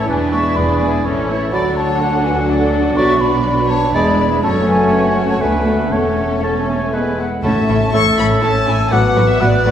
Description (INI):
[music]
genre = quick classical-period movement for symphony orchestra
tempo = 123 BPM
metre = 3/4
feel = straight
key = A major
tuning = A4 = 439 Hz
[part]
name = warm chamber violin section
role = melody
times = 0.0-9.7 s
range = A4 to C#6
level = -23 LUFS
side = left 3 dB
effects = none
[part]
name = bright oboe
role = second line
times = 0.0-9.7 s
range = B4 to A5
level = -25 LUFS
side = right 1 dB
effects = none
[part]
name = clear clarinet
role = second line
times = 0.0-9.7 s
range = F#4 to A5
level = -25 LUFS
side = left 1 dB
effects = none
[part]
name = mellow hollow silver concert flute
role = second line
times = 0.0-9.7 s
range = E5 to F#6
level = -21 LUFS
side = equal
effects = none
[part]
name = rich studio violin section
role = second line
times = 0.0-9.7 s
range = C#4 to C#5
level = -25 LUFS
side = left 1 dB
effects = none
[part]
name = rich chamber viola section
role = accompaniment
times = 0.0-9.7 s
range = E3 to E4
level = -22 LUFS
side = equal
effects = none
[part]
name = warm bassoon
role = accompaniment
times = 0.0-9.7 s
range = E3 to B3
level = -22 LUFS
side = equal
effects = none
[part]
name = mellow French horn section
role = sustained chords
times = 0.0-9.7 s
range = E3 to F#4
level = -22 LUFS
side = left 1 dB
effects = none
[part]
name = rich chamber double bass section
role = bass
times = 0.1-9.7 s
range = E1 to D2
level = -22 LUFS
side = right 1 dB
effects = none
[part]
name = warm studio cello section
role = bass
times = 0.1-9.7 s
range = D2 to D3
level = -22 LUFS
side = right 2 dB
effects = none
[part]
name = timpani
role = percussion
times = 7.4-8.1 s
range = A2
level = -25 LUFS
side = left 1 dB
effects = none
[sound]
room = wet scoring stage reverb, RT60 1.6 s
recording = heard from further back in the room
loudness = -13 LUFS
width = side -9 dB against mid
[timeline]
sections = 0.0-7.4 A section; 7.4-9.7 B section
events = none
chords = 0.1 E7; 1.0 A; 1.5 D; 3.0 Bm; 3.9 E7; 4.4 F#m; 5.4 Bm7/D; 5.9 A/E; 6.9 E; 7.4 A; 8.9 Bm7